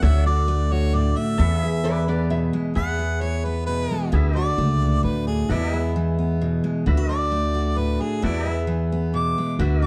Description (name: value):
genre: country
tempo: 132 BPM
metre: 3/4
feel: straight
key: E mixolydian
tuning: A4 = 442 Hz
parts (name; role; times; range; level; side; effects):
- clear harmonica; melody; 0.0-9.9 s; E4 to D6; -30 LUFS; equal; plate reverb
- picked steel-string acoustic guitar; accompaniment; 0.0-9.9 s; E2 to G#4; -27 LUFS; equal; none
- pedal steel guitar; sustained chords; 0.0-9.9 s; F#4 to F#5; -33 LUFS; equal; none
- upright bass; bass; 0.0-9.9 s; C#2 to E2; -25 LUFS; equal; none
- lap resonator guitar; second line; 1.8-2.6 s; B4 to E5; -32 LUFS; equal; none
room: light reverb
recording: dark, warm production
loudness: -22 LUFS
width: mono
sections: 0.0-2.8 A section; 2.8-9.9 B section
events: harmonica solo 2.8-9.9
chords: 0.0 D; 1.4 E; 4.1 D; 5.5 E; 6.9 D; 8.2 E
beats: | 0.03 0.49 0.94 | 1.40 1.85 2.31 | 2.76 3.22 3.67 | 4.13 4.58 5.04 | 5.50 5.95 6.41 | 6.86 7.32 7.77 | 8.23 8.68 9.14 | 9.59